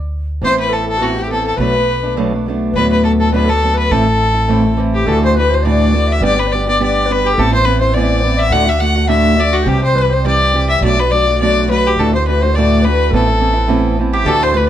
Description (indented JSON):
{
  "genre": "celtic folk, Celtic reel",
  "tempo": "208 BPM",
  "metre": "4/4",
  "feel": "swing 53% on 8ths",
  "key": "A dorian",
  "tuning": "A4 = 443 Hz",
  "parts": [
    { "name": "upright bass", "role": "bass", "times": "0.0-14.7 s", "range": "G1 to D2", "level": "-17 LUFS", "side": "equal", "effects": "none" },
    { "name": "clear fiddle", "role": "melody", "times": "0.4-14.7 s", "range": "F#4 to F#5", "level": "-16 LUFS", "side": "left 2 dB", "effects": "none" },
    { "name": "bright baroque flute", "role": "second line", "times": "0.4-14.7 s", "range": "F#4 to F#5", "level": "-22 LUFS", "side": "left 6 dB", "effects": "none" },
    { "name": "fingerpicked old ladder-braced acoustic guitar", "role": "accompaniment", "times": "0.4-14.7 s", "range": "D2 to G4", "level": "-16 LUFS", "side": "right 2 dB", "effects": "none" },
    { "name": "mandolin", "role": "second line", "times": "14.1-14.7 s", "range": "G4 to C5", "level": "-22 LUFS", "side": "right 5 dB", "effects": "none" }
  ],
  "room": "moderate studio reverb, RT60 0.7 s",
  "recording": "dark, warm production",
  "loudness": "-11 LUFS",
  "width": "side -11 dB against mid",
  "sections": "0.0-5.1 A section; 5.1-14.3 B section",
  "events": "none",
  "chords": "0.4 Amadd9; 1.6 Bm7; 2.7 D6; 3.9 Am; 5.1 Dadd9; 6.2 G; 7.4 Amadd9; 8.5 D; 9.7 C; 10.8 Bm7; 12.0 Dadd9; 13.1 Amadd9"
}